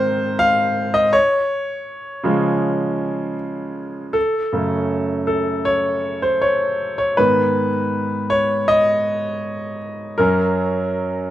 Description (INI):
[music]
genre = pop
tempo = 80 BPM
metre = 4/4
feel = straight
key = unclear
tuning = A4 = 440 Hz
[part]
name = clear grand piano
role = solo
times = 0.0-11.3 s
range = Gb2 to F5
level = -17 LUFS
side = equal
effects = slapback echo
[sound]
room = little or no reverb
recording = recorded outdoors, with no room sound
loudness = -17 LUFS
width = side -13 dB against mid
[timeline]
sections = 0.0-4.2 A section; 4.2-11.3 B section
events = grand piano solo 0.0-4.2, 4.2-11.3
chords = 0.0 Ab; 1.1 Db; 4.2 Gbm; 7.2 Abm; 10.2 Gb